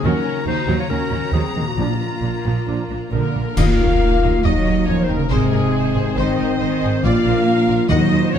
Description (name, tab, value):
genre	cinematic, heroic adventure film score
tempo	137 BPM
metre	4/4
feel	uneven beats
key	Eb dorian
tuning	A4 = 439 Hz
part	rich symphonic violin section	melody	0.0-8.4 s	Ab4 to Bb5	-31 LUFS	left 4 dB	none
part	clear clarinet	second line	0.0-8.4 s	F4 to F5	-28 LUFS	left 3 dB	none
part	rich symphonic violin section	second line	0.0-8.4 s	Bb3 to F5	-29 LUFS	left 2 dB	none
part	rich symphonic viola section	accompaniment	0.0-8.4 s	F3 to Eb5	-30 LUFS	right 2 dB	none
part	warm trombone section	sustained chords	0.0-8.4 s	Eb3 to F4	-30 LUFS	right 4 dB	none
part	concert harp	arpeggios	0.0-8.4 s	Ab2 to Eb5	-27 LUFS	left 12 dB	none
part	rich symphonic cello section	bass	0.0-8.4 s	Bb2 to Bb3	-22 LUFS	right 4 dB	none
part	rich symphonic double bass section	bass	0.0-8.4 s	Ab1 to Eb2	-23 LUFS	right 4 dB	none
part	timpani	percussion	1.8-4.2, 7.0-8.4 s	Bb2 to Eb3	-24 LUFS	left 2 dB	none
part	mellow silver concert flute	second line	3.1-8.4 s	Ab4 to F5	-30 LUFS	left 3 dB	none
part	dark French horn section	sustained chords	3.1-8.4 s	Ab3 to F4	-21 LUFS	left 3 dB	none
part	clash cymbals and concert bass drum	percussion	3.6-4.4 s	none	-21 LUFS	equal	none
room	light reverb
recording	close, detailed microphones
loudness	-16 LUFS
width	side -8 dB against mid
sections	0.0-3.6 A section; 3.6-8.4 B section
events	band accent 3.6-4.0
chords	0.0 Gb/Eb; 1.8 Bb; 3.6 Ebmadd9; 5.3 Ab; 7.0 Bb